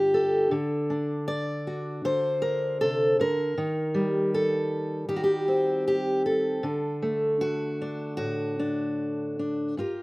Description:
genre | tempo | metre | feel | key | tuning
folk, solo fingerstyle acoustic guitar | 78 BPM | 4/4 | rubato | unclear | A4 = 441 Hz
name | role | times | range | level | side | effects
fingerpicked steel-string acoustic guitar | solo | 0.0-10.0 s | G2 to D5 | -24 LUFS | equal | none
room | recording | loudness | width
little or no reverb | recorded outdoors, with no room sound | -24 LUFS | side -22 dB against mid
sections
0.0-9.8 A section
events
none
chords
0.0 G7(no3); 0.5 D; 3.6 Cm7/Eb; 6.7 D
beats
| 0.53 1.30 2.06 2.83 | 3.59 4.35 5.11 5.88 | 6.65 7.43 8.21 9.00 | 9.79

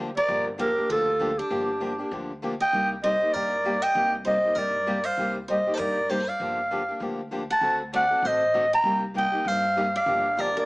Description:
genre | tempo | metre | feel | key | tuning
acoustic string swing (jazz manouche) | 196 BPM | 4/4 | swing 58% on 8ths | G minor | A4 = 440 Hz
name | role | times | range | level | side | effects
picked steel-string acoustic guitar | accompaniment | 0.0-10.7 s | C3 to A4 | -31 LUFS | left 1 dB | none
upright bass | bass | 0.0-10.6 s | G1 to G2 | -40 LUFS | equal | none
growling clarinet | melody | 0.2-10.7 s | G4 to Bb5 | -23 LUFS | equal | none
picked steel-string acoustic guitar | second line | 0.2-10.7 s | D4 to G5 | -34 LUFS | right 1 dB | none
room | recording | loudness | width
moderate studio reverb, RT60 0.8 s | small speaker sound | -22 LUFS | side -24 dB against mid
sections
0.0-10.7 A section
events
none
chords
0.0 Gm7; 2.7 Cm7; 6.4 Gm7; 7.6 D7b9; 8.8 Cm7; 10.1 Gm7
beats
| 0.29 0.60 0.90 1.21 | 1.51 1.82 2.12 2.43 | 2.73 3.04 3.34 3.65 | 3.95 4.26 4.57 4.87 | 5.18 5.48 5.79 6.09 | 6.40 6.70 7.01 7.32 | 7.62 7.93 8.23 8.54 | 8.84 9.15 9.46 9.76 | 10.07 10.37

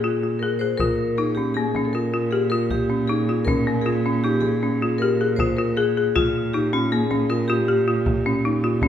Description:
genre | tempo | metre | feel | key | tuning
contemporary instrumental, chamber music in an uneven meter | 157 BPM | 7/4 | straight | Bb dorian | A4 = 440 Hz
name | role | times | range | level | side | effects
vibraphone with hard mallets | second line | 0.0-8.9 s | F4 to C5 | -26 LUFS | left 3 dB | none
folk marimba with hard mallets | arpeggios | 0.0-8.9 s | Bb3 to Ab4 | -22 LUFS | left 3 dB | none
warm cello | bass | 0.0-8.9 s | Bb2 | -25 LUFS | right 4 dB | none
frame drum | percussion | 0.8-8.9 s | none | -28 LUFS | equal | none
room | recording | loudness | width
moderate recital hall reverb, RT60 1.6 s | none | -19 LUFS | side -10 dB against mid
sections
0.0-8.9 A section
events
none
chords
0.0 Bbm7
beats
0.03 0.41 | 0.80 1.18 1.56 1.95 2.33 2.71 3.09 | 3.48 3.86 4.24 4.62 5.01 5.39 5.77 | 6.16 6.54 6.92 7.30 7.68 8.07 8.45 | 8.83

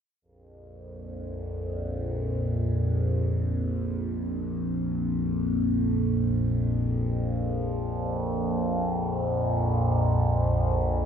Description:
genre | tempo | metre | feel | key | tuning
ambient | free time | none | none | unclear | A4 = 440 Hz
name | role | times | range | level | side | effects
overtone-sweeping drone | solo | 0.9-11.1 s | Bb1 to F2 | -25 LUFS | equal | chorus, built-in reverb, phaser
room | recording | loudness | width
wet cathedral reverb, RT60 5.6 s | none | -25 LUFS | side -8 dB against mid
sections
0.2-11.1 A section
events
none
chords
0.2 Bb5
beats
free time

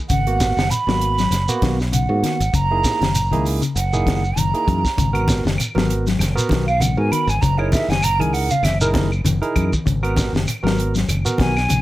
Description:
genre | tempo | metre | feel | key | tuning
afrobeat | 98 BPM | 4/4 | swing 56% on 16ths | G# minor | A4 = 439 Hz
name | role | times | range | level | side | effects
breathy mellow jazz flute | melody | 0.1-11.8 s | A#4 to B5 | -22 LUFS | right 3 dB | none
mellow electric guitar | arpeggios | 0.1-11.8 s | C#3 to F#3 | -25 LUFS | left 5 dB | wide subtle chorus
fingered electric bass | bass | 0.1-11.8 s | F#1 to G#2 | -21 LUFS | equal | none
tight funk drum kit | drums | 0.1-11.8 s | hi-hat, kick drum, snare drum | -23 LUFS | equal | none
shekere | percussion | 0.1-11.8 s | none | -26 LUFS | right 1 dB | none
barky tine electric piano | accompaniment | 0.3-11.5 s | A#3 to A#4 | -26 LUFS | right 3 dB | plate reverb
congas | percussion | 5.0-11.8 s | none | -26 LUFS | equal | none
claves | percussion | 5.1-11.7 s | none | -31 LUFS | left 1 dB | none
room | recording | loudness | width
light reverb | none | -16 LUFS | side -16 dB against mid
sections
0.0-11.8 A section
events
flute solo 0.0-11.8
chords
0.1 G#m9; 2.5 F#13; 5.0 G#m9; 7.4 F#13; 9.9 G#m9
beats
| 0.10 0.71 1.32 1.93 | 2.54 3.15 3.76 4.37 | 4.98 5.59 6.20 6.81 | 7.42 8.03 8.64 9.25 | 9.86 10.47 11.09 11.70

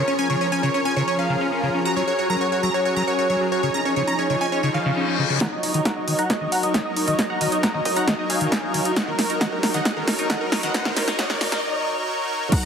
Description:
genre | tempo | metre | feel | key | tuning
uplifting trance | 135 BPM | 4/4 | straight | Eb minor | A4 = 439 Hz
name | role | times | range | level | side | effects
supersaw stab | melody | 0.0-12.6 s | Bb4 to Bb5 | -24 LUFS | right 1 dB | sidechain pumping, low-pass filter, tape echo
lush unison pad | sustained chords | 0.0-12.7 s | Eb3 to Db5 | -25 LUFS | equal | chorus, sidechain pumping
liquid acid bass | arpeggios | 0.0-12.6 s | Db3 to Gb4 | -27 LUFS | left 2 dB | phaser, sidechain pumping, tape echo
reverse cymbal and riser | sound effects | 4.7-11.6 s | none | -30 LUFS | left 2 dB | none
electronic kick drum | drums | 5.4-12.6 s | none | -26 LUFS | equal | overdrive, high-pass filter on kick
punchy analog drum machine | drums | 5.4-12.6 s | crash cymbal, hi-hat, snare drum | -24 LUFS | equal | overdrive
room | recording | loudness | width
wet digital room reverb, RT60 1.1 s, digital ambience | heavily compressed radio sound, multiband compression, high-pass filter | -19 LUFS | side -7 dB against mid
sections
0.0-5.4 A section; 5.4-12.5 B section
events
reverse cymbal 4.7-5.4; build-up 5.4-12.5; drum fill 5.4-11.6; riser 5.4-11.6; filter sweep on supersaw synth 5.4-12.5; filter sweep on acid bass 5.4-12.5; filter sweep 5.4-12.5; break 11.6-12.5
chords
0.0 Db6; 1.9 Gbadd9; 3.6 Dbadd9; 5.4 Ebm7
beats
| 0.08 0.52 0.96 1.41 | 1.85 2.30 2.74 3.19 | 3.63 4.08 4.52 4.96 | 5.41 5.85 6.30 6.74 | 7.19 7.63 8.08 8.52 | 8.96 9.41 9.85 10.30 | 10.74 11.19 11.63 12.08 | 12.52

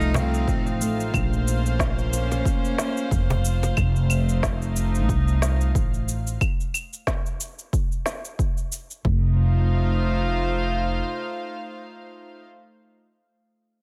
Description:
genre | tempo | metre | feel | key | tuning
organic downtempo | 91 BPM | 4/4 | swing 56% on 16ths | unclear | A4 = 440 Hz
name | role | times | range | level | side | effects
bright cello | melody | 0.0-0.8 s | C4 to Eb4 | -35 LUFS | equal | tape echo
warm studio string section | sustained chords | 0.0-12.5 s | A3 to F5 | -31 LUFS | equal | sidechain pumping
handpan | arpeggios | 0.0-1.0 s | A3 to F4 | -34 LUFS | equal | tape echo
upright bass | bass | 0.0-11.0 s | F1 to C2 | -25 LUFS | equal | tube saturation, sidechain pumping
electronic shaker, snare drum and claves | drums | 0.0-9.0 s | none | -32 LUFS | equal | none
drifting glass-harmonics texture | texture | 0.0-3.8 s | F5 | -44 LUFS | equal | none
cajon | percussion | 0.1-3.7 s | none | -31 LUFS | equal | none
electronic kick drum | drums | 0.5-9.2 s | none | -27 LUFS | equal | none
room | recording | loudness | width
studio reverb | none | -24 LUFS | mono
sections
0.0-9.0 A section; 9.0-11.7 B section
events
none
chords
0.0 F7; 1.1 Bbmadd9; 3.8 F7; 6.4 N.C.; 9.0 F7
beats
0.48 | 1.14 1.80 2.46 3.12 | 3.77 4.43 5.09 5.75 | 6.41 7.07 7.73 8.39 | 9.05 9.71 10.37 11.03

